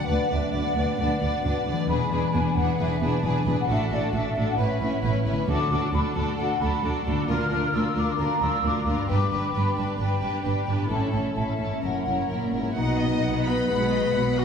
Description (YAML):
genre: cinematic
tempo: 133 BPM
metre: 4/4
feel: straight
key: D major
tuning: A4 = 440 Hz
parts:
  - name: rich chamber violin section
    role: melody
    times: 0.0-14.4 s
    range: A4 to F#5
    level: -33 LUFS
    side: left 1 dB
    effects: none
  - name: large flute ensemble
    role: second line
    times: 0.0-12.3 s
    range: D5 to F6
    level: -29 LUFS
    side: left 1 dB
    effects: none
  - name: warm symphonic violin section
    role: second line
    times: 0.0-14.4 s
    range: E4 to B5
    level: -33 LUFS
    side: left 2 dB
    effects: none
  - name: rich symphonic viola section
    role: accompaniment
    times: 0.0-14.4 s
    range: F#3 to D4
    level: -32 LUFS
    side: right 1 dB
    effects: none
  - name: concert harp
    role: arpeggios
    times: 0.0-14.4 s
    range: F#2 to B4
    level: -32 LUFS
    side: left 5 dB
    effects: none
  - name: warm symphonic cello section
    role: bass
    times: 0.1-14.4 s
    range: D2 to B2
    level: -29 LUFS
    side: right 2 dB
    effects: none
  - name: warm symphonic double bass section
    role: bass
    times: 0.1-14.4 s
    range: E1 to D2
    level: -30 LUFS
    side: right 2 dB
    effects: none
  - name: timpani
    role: percussion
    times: 5.5-6.1 s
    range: D3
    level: -33 LUFS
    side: left 1 dB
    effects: none
  - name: clear clarinet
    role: second line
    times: 12.8-14.4 s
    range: D#4 to B4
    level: -25 LUFS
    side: left 3 dB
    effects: none
room: wet scoring stage reverb, RT60 2.0 s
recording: heard from further back in the room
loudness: -22 LUFS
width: side -7 dB against mid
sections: 0.0-12.8 A section; 12.8-14.4 B section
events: none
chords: 0.1 Bm/D; 1.9 E7; 3.7 D/A; 4.6 Aadd9; 5.5 D; 7.3 Bb/D; 9.1 G; 10.9 A; 11.8 F#7; 12.8 B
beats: | 0.08 0.54 0.99 1.44 | 1.89 2.33 2.79 3.24 | 3.69 4.14 4.59 5.04 | 5.49 5.93 6.39 6.84 | 7.29 7.73 8.19 8.64 | 9.09 9.54 9.99 10.45 | 10.90 11.37 11.84 12.31 | 12.78 13.24 13.70 14.15